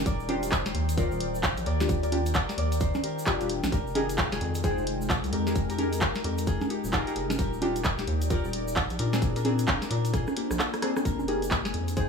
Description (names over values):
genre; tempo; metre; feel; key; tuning
UK garage, two-step garage; 131 BPM; 4/4; swing 62% on 16ths; F dorian; A4 = 440 Hz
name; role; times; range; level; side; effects
Celtic harp; melody; 0.0-12.1 s; Bb3 to D5; -34 LUFS; left 5 dB; dub echo
rubbery square bass; bass; 0.0-12.1 s; Eb1 to Bb2; -30 LUFS; equal; sidechain pumping
ethereal airy pad; texture; 0.0-12.1 s; Eb3 to G5; -35 LUFS; equal; ensemble chorus, built-in reverb, sidechain pumping
electronic kick drum; drums; 0.1-12.1 s; none; -28 LUFS; equal; none
punchy analog drum machine; drums; 0.1-12.1 s; congas, handclaps, hi-hat, rim click, snare drum; -31 LUFS; right 1 dB; none
egg shaker; percussion; 0.1-12.1 s; none; -46 LUFS; right 2 dB; none
deep mellow chord stab; stabs; 0.3-12.1 s; C4 to G5; -32 LUFS; left 1 dB; chorus, dub echo
room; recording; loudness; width
light reverb, digital ambience; small room ambience; -25 LUFS; side -5 dB against mid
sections
0.0-11.1 A section; 11.1-12.1 B section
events
drop 0.0-11.1; drum fill 10.1-11.1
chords
0.1 Ebmaj7; 3.7 Fm11; 9.2 Bb9; 11.1 Fm11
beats
| 0.06 0.52 0.97 1.43 | 1.89 2.35 2.81 3.27 | 3.72 4.18 4.64 5.10 | 5.56 6.01 6.47 6.93 | 7.39 7.85 8.30 8.76 | 9.22 9.68 10.14 10.59 | 11.05 11.51 11.97